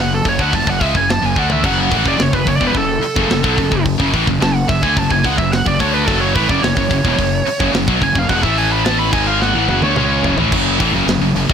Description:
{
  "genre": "heavy metal",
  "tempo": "108 BPM",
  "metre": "4/4",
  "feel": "straight",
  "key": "F# minor",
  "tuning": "A4 = 439 Hz",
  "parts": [
    { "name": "high-gain lead guitar", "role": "melody", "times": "0.0-10.3 s", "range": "A4 to B5", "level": "-19 LUFS", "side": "right 3 dB", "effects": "distortion, digital delay" },
    { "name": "scooped high-gain guitar", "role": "riff", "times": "0.0-11.5 s", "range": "E2 to D4", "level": "-20 LUFS", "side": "left 13 dB", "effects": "distortion" },
    { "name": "scooped high-gain guitar", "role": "riff", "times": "0.0-11.5 s", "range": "E2 to D4", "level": "-22 LUFS", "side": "right 10 dB", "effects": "distortion" },
    { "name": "fuzz fingered electric bass", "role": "bass", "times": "0.0-11.5 s", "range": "E1 to D2", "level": "-20 LUFS", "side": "left 1 dB", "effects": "overdrive" },
    { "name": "tight metal drum kit", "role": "drums", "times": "0.3-11.5 s", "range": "crash cymbal, hi-hat, kick drum, snare drum, toms", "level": "-20 LUFS", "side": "equal", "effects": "soft clipping on kick" },
    { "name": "distorted electric guitar", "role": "riff", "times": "1.6-11.5 s", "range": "E2 to D4", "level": "-22 LUFS", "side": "left 1 dB", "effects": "distortion" }
  ],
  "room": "small room ambience",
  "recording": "blown-out, overdriven recording, overdrive",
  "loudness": "-13 LUFS",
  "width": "side -7 dB against mid",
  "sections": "0.0-10.5 A section; 10.5-11.5 B section",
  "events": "lead electric guitar solo 0.0-10.5; drum fill 1.4, 9.4-10.5",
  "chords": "0.0 F#m; 8.4 A5; 9.1 F#m"
}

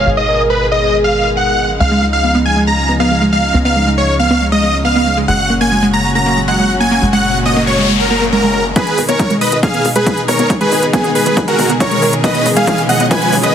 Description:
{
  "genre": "uplifting trance",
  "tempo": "138 BPM",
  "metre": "4/4",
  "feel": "straight",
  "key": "G# dorian",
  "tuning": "A4 = 439 Hz",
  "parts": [
    { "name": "big supersaw lead", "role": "melody", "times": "0.0-13.5 s", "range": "B3 to A#5", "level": "-14 LUFS", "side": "equal", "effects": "sidechain pumping, low-pass filter, ping-pong delay" },
    { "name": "warm velvety synth lead", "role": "second line", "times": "0.0-1.7 s", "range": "G#4 to C#5", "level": "-18 LUFS", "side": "equal", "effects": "chorus, ping-pong delay" },
    { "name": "dark studio string section", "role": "sustained chords", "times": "0.0-13.5 s", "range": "A#2 to G#4", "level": "-19 LUFS", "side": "left 1 dB", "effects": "sidechain pumping" },
    { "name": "tight sequencer bass", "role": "bass", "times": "0.0-13.5 s", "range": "F#1 to C#2", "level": "-21 LUFS", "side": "equal", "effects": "sidechain pumping, high-pass filter" },
    { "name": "wide unison pluck", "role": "arpeggios", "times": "1.8-13.4 s", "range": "G#3 to B3", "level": "-17 LUFS", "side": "right 1 dB", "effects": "sidechain pumping, ping-pong delay" },
    { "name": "noise sweep and riser", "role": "sound effects", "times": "7.3-13.5 s", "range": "none", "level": "-22 LUFS", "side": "left 1 dB", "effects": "none" },
    { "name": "warm grand piano", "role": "second line", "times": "8.8-13.5 s", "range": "G#4 to G#5", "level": "-20 LUFS", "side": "equal", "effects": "sidechain pumping, ping-pong delay" },
    { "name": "electronic hi-hat", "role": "drums", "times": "8.8-13.5 s", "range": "none", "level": "-23 LUFS", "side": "equal", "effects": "low-pass filter on hats, studio reverb" },
    { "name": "electronic kick drum", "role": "drums", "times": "8.8-13.2 s", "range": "none", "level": "-17 LUFS", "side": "equal", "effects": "high-pass filter on kick, studio reverb" }
  ],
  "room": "light reverb, digital ambience",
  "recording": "heavily compressed radio sound",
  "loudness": "-11 LUFS",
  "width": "side -9 dB against mid",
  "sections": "0.0-8.8 A section; 8.8-13.5 B section",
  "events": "noise sweep 7.3-8.8; build-up 8.8-13.5; filter sweep on synth pluck 8.8-13.5; drum fill 12.2-13.5",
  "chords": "0.0 G#m; 1.8 C#add9; 5.3 F#; 8.8 G#m"
}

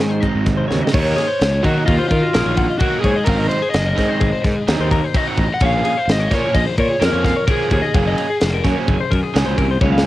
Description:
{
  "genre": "math rock and midwest emo",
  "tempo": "129 BPM",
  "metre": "5/4",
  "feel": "straight",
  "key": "unclear",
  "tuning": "A4 = 440 Hz",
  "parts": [
    { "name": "semi-hollow electric guitar", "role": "accompaniment", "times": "0.0-0.9 s", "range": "Ab2 to Eb4", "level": "-23 LUFS", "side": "right 5 dB", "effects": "analog chorus, cassette tape" },
    { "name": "clean electric guitar", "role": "arpeggios", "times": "0.0-10.1 s", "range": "Gb4 to Gb5", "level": "-25 LUFS", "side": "left 7 dB", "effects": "cassette tape" },
    { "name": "overdriven electric guitar", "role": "riff", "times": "0.0-10.1 s", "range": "Ab2 to Eb4", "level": "-24 LUFS", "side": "right 7 dB", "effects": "cassette tape" },
    { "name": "fuzz fingered electric bass", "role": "bass", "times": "0.0-10.0 s", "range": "F1 to Eb3", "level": "-19 LUFS", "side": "equal", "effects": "overdrive" },
    { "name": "crisp fusion drum kit", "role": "drums", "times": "0.0-10.1 s", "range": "crash cymbal, hi-hat, kick drum, ride cymbal, snare drum, toms", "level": "-20 LUFS", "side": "equal", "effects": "none" },
    { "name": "overdriven semi-hollow guitar", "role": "melody", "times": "0.9-8.4 s", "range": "F4 to Gb5", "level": "-21 LUFS", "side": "equal", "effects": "cassette tape" }
  ],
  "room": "little or no reverb",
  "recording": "home recording on cassette",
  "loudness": "-15 LUFS",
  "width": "side -15 dB against mid",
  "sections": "0.9-10.1 A section",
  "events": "drum fill 0.7, 9.8",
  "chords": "0.0 Ab7; 0.9 Ebm9; 3.3 Ab9; 5.6 Bbm7; 7.9 Gbmaj9"
}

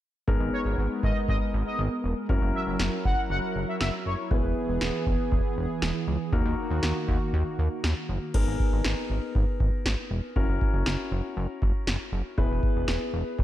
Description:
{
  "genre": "synth-pop",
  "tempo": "119 BPM",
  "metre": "4/4",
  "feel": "straight",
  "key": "G# minor",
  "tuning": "A4 = 440 Hz",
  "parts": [
    { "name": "warm concert grand piano", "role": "accompaniment", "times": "0.3-13.4 s", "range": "A#3 to B4", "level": "-32 LUFS", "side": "left 2 dB", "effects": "none" },
    { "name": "warm analog pad", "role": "sustained chords", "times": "0.3-8.3 s", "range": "D#3 to A#4", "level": "-33 LUFS", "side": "right 2 dB", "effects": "chorus, tremolo" },
    { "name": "chorused synth bass", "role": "bass", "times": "0.3-13.4 s", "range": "E1 to D#2", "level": "-28 LUFS", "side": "equal", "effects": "none" },
    { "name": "electro analog drum machine", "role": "drums", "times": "0.3-13.4 s", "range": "crash cymbal, kick drum, snare drum", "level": "-28 LUFS", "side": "equal", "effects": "none" },
    { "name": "analog synth brass", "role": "second line", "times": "0.5-4.1 s", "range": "C#5 to F#5", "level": "-33 LUFS", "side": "left 1 dB", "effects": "chorus, slapback echo" }
  ],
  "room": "light reverb",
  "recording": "dark, warm production",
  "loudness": "-24 LUFS",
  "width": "side -13 dB against mid",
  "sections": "0.3-8.3 A section; 8.3-13.4 B section",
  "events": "none",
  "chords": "0.3 G#madd9; 2.3 F#7; 4.3 E; 6.3 D#m; 8.3 G#madd9; 10.4 F#7; 12.4 E"
}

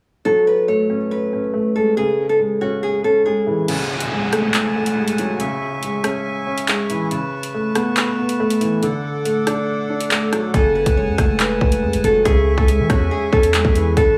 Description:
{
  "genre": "hip hop, drill",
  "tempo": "140 BPM",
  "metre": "4/4",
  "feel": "half-time",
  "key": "F# minor",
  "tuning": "A4 = 436 Hz",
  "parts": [
    { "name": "nylon-string guitar", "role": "melody", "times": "0.3-3.7, 10.5-14.2 s", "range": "F#4 to C#5", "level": "-20 LUFS", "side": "equal", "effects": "digital delay" },
    { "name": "dark concert grand piano", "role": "accompaniment", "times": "0.3-14.2 s", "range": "C#3 to D4", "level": "-23 LUFS", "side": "equal", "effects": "none" },
    { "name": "accordion", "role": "sustained chords", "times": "3.7-14.2 s", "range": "A4 to D6", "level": "-29 LUFS", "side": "equal", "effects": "none" },
    { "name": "drill drum kit", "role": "drums", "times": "3.7-14.1 s", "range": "crash cymbal, handclaps, hi-hat, kick drum, rim click", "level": "-22 LUFS", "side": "equal", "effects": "none" },
    { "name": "downlifter and swell", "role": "sound effects", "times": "3.7-7.1, 14.0-14.2 s", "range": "none", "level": "-31 LUFS", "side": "equal", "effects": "none" },
    { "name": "hard-hitting 808-style bass", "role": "bass", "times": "10.5-14.2 s", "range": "F#1 to E3", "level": "-22 LUFS", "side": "equal", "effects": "none" }
  ],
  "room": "moderate plate reverb, RT60 1.6 s, studio reverb",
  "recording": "small room ambience",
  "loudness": "-18 LUFS",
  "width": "mono",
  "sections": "0.3-3.7 A section; 3.7-14.2 B section",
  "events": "kick muted 3.7-10.5",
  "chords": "0.3 F#madd9; 2.0 C#m; 3.7 F#madd9; 5.4 C#m; 7.1 Aadd9; 8.8 D; 10.5 F#madd9; 12.3 C#m"
}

